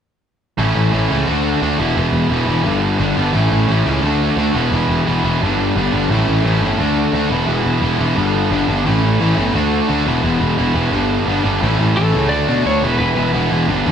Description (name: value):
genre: punk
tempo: 174 BPM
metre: 4/4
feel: straight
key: A mixolydian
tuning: A4 = 437 Hz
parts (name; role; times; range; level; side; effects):
- distorted electric guitar; riff; 0.6-13.9 s; G2 to F#4; -19 LUFS; right 10 dB; overdrive, slapback echo
- overdriven semi-hollow guitar; riff; 0.6-13.9 s; E2 to D4; -20 LUFS; left 12 dB; slapback echo
- fuzz picked electric bass; bass; 0.6-13.9 s; E1 to B2; -18 LUFS; equal; overdrive
- lightly driven lead guitar; melody; 12.0-13.3 s; A4 to D5; -20 LUFS; left 2 dB; slapback echo
room: digital ambience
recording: live gig heard through the venue's PA, club reverb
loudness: -14 LUFS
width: side -8 dB against mid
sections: 0.6-11.6 A section; 11.6-13.9 B section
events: none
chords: 0.6 A; 1.3 D; 1.8 E; 2.7 G; 3.4 A; 4.0 D; 4.6 E; 5.4 G; 6.1 A; 6.8 D; 7.3 E; 8.2 G; 8.9 A; 9.6 D; 10.1 E; 10.9 G; 11.6 A; 12.3 D; 12.8 E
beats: | 0.60 0.94 1.29 1.63 | 1.98 2.32 2.67 3.01 | 3.35 3.70 4.04 4.38 | 4.73 5.07 5.42 5.76 | 6.11 6.45 6.79 7.14 | 7.48 7.83 8.17 8.52 | 8.86 9.21 9.55 9.89 | 10.24 10.58 10.93 11.27 | 11.62 11.96 12.30 12.65 | 12.99 13.34 13.68